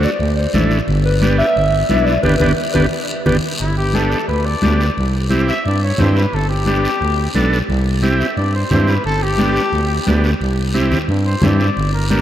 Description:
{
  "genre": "latin, cumbia",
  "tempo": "176 BPM",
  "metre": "4/4",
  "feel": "straight",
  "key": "G major",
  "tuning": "A4 = 440 Hz",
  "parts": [
    { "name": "growling clarinet", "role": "second line", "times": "0.0-3.3 s", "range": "B4 to E5", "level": "-20 LUFS", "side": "left 1 dB", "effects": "none" },
    { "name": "combo organ", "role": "accompaniment", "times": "0.0-12.2 s", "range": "A3 to A4", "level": "-20 LUFS", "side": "right 2 dB", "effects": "none" },
    { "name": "growling FM bass", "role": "bass", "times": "0.0-12.2 s", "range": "G1 to G2", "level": "-17 LUFS", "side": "equal", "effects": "none" },
    { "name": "guiro", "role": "percussion", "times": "0.0-12.2 s", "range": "none", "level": "-29 LUFS", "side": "left 2 dB", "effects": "none" },
    { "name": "congas", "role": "percussion", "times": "0.2-12.2 s", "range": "none", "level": "-22 LUFS", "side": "left 1 dB", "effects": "none" },
    { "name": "warm trumpet", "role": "melody", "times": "3.6-12.2 s", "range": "E4 to E5", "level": "-22 LUFS", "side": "left 2 dB", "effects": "none" }
  ],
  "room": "moderate cathedral reverb, RT60 5.3 s",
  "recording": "in a vast, echoing space",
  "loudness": "-14 LUFS",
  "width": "side -11 dB against mid",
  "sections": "0.0-3.6 A section; 3.6-12.2 B section",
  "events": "clarinet solo 0.0-3.6; band accent 2.2-3.6; drum fill 2.9-3.6; trumpet solo 3.6-12.2",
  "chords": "0.0 D7; 0.9 G; 5.0 C; 6.3 G; 7.7 C; 9.0 G; 10.4 C"
}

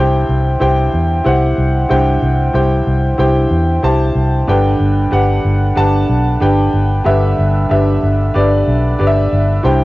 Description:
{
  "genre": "piano-driven pop",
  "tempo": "93 BPM",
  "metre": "4/4",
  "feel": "straight",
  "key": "G major",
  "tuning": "A4 = 441 Hz",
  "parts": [
    { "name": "clear upright piano", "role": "accompaniment", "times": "0.0-9.8 s", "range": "G2 to A5", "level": "-14 LUFS", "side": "equal", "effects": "cassette tape" },
    { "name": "vintage muted fingered electric bass", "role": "bass", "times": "0.0-9.8 s", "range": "G1 to E2", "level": "-14 LUFS", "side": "equal", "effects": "none" }
  ],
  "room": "light reverb",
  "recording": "home recording on cassette, nothing above 7.7 kHz",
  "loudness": "-11 LUFS",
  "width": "side -18 dB against mid",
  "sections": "0.0-9.8 A section",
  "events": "none",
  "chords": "0.0 C; 4.5 G"
}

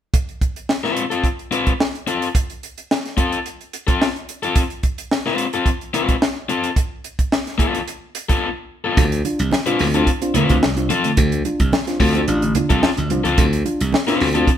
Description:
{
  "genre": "funk",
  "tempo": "109 BPM",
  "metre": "4/4",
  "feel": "straight",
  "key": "unclear",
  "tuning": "A4 = 442 Hz",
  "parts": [
    { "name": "tight funk drum kit", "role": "drums", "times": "0.1-14.6 s", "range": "hi-hat, kick drum, snare drum", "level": "-20 LUFS", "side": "right 1 dB", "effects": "none" },
    { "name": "overdriven electric guitar", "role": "accompaniment", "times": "0.8-14.5 s", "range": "B3 to B4", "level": "-21 LUFS", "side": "left 4 dB", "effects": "none" },
    { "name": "mellow tine electric piano", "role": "stabs", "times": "9.0-14.5 s", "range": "D3 to F4", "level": "-22 LUFS", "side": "equal", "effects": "none" },
    { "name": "glassy slap bass", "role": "bass", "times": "9.0-14.5 s", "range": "A1 to D2", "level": "-21 LUFS", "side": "equal", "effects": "none" },
    { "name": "congas", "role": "percussion", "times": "9.0-14.6 s", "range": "none", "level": "-26 LUFS", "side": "right 4 dB", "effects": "none" }
  ],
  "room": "moderate studio reverb, RT60 0.8 s",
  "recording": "band playing live in one room",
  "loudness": "-17 LUFS",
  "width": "side -10 dB against mid",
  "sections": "0.1-9.0 A section; 9.0-14.6 B section",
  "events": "none",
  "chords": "0.1 Csus4; 6.8 F; 9.0 Dm7"
}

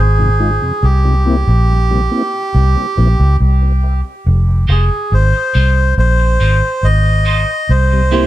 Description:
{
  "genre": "reggae",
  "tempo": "70 BPM",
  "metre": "4/4",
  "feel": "straight",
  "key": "F minor",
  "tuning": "A4 = 440 Hz",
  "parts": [
    { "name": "melodica", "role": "melody", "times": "0.0-8.3 s", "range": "G4 to Eb5", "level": "-17 LUFS", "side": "right 1 dB", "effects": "tape echo" },
    { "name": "vintage muted fingered electric bass", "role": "bass", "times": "0.0-8.3 s", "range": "F1 to Db2", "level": "-11 LUFS", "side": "equal", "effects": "none" },
    { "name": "mellow tonewheel organ", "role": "accompaniment", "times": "0.2-8.2 s", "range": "F2 to F4", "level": "-21 LUFS", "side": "left 2 dB", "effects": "chorus vibrato, slow rotary speaker, high-pass filter, tape echo" },
    { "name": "clean electric guitar", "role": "accompaniment", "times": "4.7-8.3 s", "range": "Ab3 to C5", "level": "-21 LUFS", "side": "right 5 dB", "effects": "high-pass filter" }
  ],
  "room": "studio reverb",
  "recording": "none",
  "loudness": "-11 LUFS",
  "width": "side -15 dB against mid",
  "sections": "0.0-8.3 A section",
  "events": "break 0.0-4.3; filter sweep 0.8-7.7",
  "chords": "0.0 Fm7; 0.8 C7; 4.3 Fm7; 7.7 C7"
}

